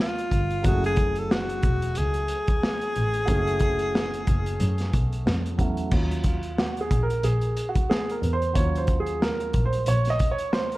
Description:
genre	hip hop, jazz-hop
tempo	91 BPM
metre	4/4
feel	swing 59% on 16ths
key	Eb dorian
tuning	A4 = 440 Hz
part	breathy alto saxophone	melody	0.0-5.3 s	F4 to A4	-28 LUFS	left 1 dB	none
part	dark grand piano	accompaniment	0.0-10.8 s	Gb3 to Eb5	-29 LUFS	right 2 dB	none
part	crunchy breakbeat drum kit	drums	0.0-10.8 s	crash cymbal, hi-hat, kick drum, snare drum	-26 LUFS	equal	none
part	dark double bass	bass	0.3-10.1 s	Fb1 to Gb2	-26 LUFS	equal	none
room	light reverb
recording	dark, warm production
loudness	-22 LUFS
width	side -18 dB against mid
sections	0.0-5.9 A section; 5.9-10.8 B section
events	grand piano solo 5.9-10.8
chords	0.0 Ebm9; 0.6 Gbm9; 5.9 Ebm9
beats	| 0.64 1.30 1.96 2.62 | 3.28 3.94 4.60 5.26 | 5.92 6.58 7.24 7.89 | 8.55 9.21 9.87 10.53

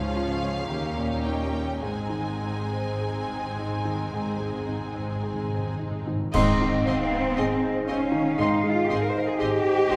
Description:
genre	classical, romantic movement for piano and orchestra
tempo	51-60 BPM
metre	4/4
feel	rubato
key	Ab major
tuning	A4 = 440 Hz
part	clear concert grand piano	melody	0.0-10.0 s	Db2 to Db5	-31 LUFS	equal	none
part	warm symphonic violin section	melody	0.0-10.0 s	F5 to C6	-40 LUFS	equal	none
part	rich symphonic violin section	second line	0.0-10.0 s	Eb4 to Eb5	-42 LUFS	equal	none
part	warm symphonic viola section	accompaniment	0.0-10.0 s	F3 to Db4	-36 LUFS	equal	none
part	warm symphonic cello section	bass	0.0-10.0 s	Db2 to C5	-32 LUFS	equal	none
part	warm symphonic double bass section	bass	0.0-10.0 s	Ab1 to Eb2	-38 LUFS	equal	none
part	timpani	percussion	1.8-7.8 s	Ab2	-36 LUFS	equal	none
part	mellow hollow flute section	second line	6.3-10.0 s	C5 to F5	-34 LUFS	equal	none
part	warm clarinet	second line	6.3-8.8 s	C6	-33 LUFS	equal	none
part	warm bassoon	accompaniment	6.3-8.8 s	Eb4	-34 LUFS	equal	none
part	mellow French horn section	sustained chords	6.3-10.0 s	Ab3 to Eb4	-34 LUFS	equal	none
part	clash cymbals and concert bass drum	percussion	6.3-8.4 s	none	-34 LUFS	equal	none
room	wet scoring stage reverb, RT60 1.6 s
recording	none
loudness	-26 LUFS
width	mono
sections	0.0-6.3 A section; 6.3-10.0 A section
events	timpani fill 1.8-6.3; band accent 6.3-7.4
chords	0.0 Db; 0.7 Eb7; 1.8 Ab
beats	0.69 | 1.82 2.99 4.12 5.22 | 6.34 7.37 8.40 9.41

